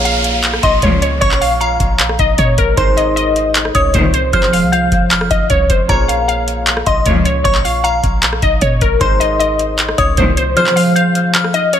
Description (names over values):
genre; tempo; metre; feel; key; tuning
hip hop, trap; 154 BPM; 4/4; half-time; Bb minor; A4 = 441 Hz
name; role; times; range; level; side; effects
glassy wavetable pluck; melody; 0.0-11.8 s; Bb4 to F5; -16 LUFS; left 1 dB; chorus, low-pass filter, tape echo
delicate synth tine bell; second line; 0.0-11.7 s; Bb5 to G6; -20 LUFS; left 3 dB; chorus, tape echo
concert harp; accompaniment; 0.0-11.8 s; F3 to Db5; -20 LUFS; right 1 dB; low-pass filter
clean 808-style bass; bass; 0.0-10.6 s; F1 to Bb2; -18 LUFS; equal; none
downlifter; sound effects; 0.0-2.8 s; none; -22 LUFS; right 1 dB; none
booming analog drum machine; drums; 0.1-11.8 s; handclaps, hi-hat, kick drum, rim click; -16 LUFS; equal; none
bright symphonic string section; stabs; 0.8-1.2, 3.9-4.3, 7.1-7.4, 10.2-10.5 s; C2 to F3; -20 LUFS; left 4 dB; none
room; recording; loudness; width
light reverb; lossy compression artefacts; -11 LUFS; side -9 dB against mid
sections
0.0-11.8 A section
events
kick muted 10.6-11.8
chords
0.0 Bbm7; 2.8 Abadd9; 4.3 Fm; 5.9 Bbm7; 9.0 Abadd9; 10.6 Fm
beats
0.05 0.44 0.83 | 1.22 1.61 2.00 2.38 | 2.77 3.17 3.55 3.94 | 4.33 4.72 5.11 5.50 | 5.89 6.28 6.67 7.06 | 7.45 7.84 8.23 8.62 | 9.01 9.40 9.79 10.18 | 10.57 10.96 11.35 11.74